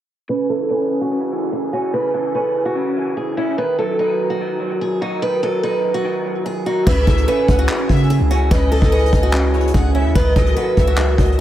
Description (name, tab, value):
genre	hip hop, trap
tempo	146 BPM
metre	4/4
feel	half-time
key	C# minor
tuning	A4 = 440 Hz
part	picked old ladder-braced acoustic guitar	melody	0.3-11.4 s	E4 to B4	-20 LUFS	right 1 dB	low-pass filter, analog delay
part	electric guitar through a small old amp	accompaniment	0.3-11.4 s	C#3 to F#4	-22 LUFS	right 1 dB	ensemble chorus, low-pass filter, analog delay
part	rich studio violin section	second line	6.9-11.4 s	C#5 to F#5	-28 LUFS	left 2 dB	analog delay
part	warm 808-style bass	bass	6.9-11.4 s	C#2 to C#3	-17 LUFS	equal	none
part	vintage brush drum kit	drums	6.9-11.4 s	crash cymbal, handclaps, hi-hat, kick drum	-18 LUFS	equal	none
room	light reverb, small room reverb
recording	echo-heavy mix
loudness	-15 LUFS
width	side -12 dB against mid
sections	0.3-6.9 A section; 6.9-11.4 B section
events	filter sweep 0.3-6.9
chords	0.3 C#m; 3.6 D#m; 6.9 C#m; 10.2 C#m11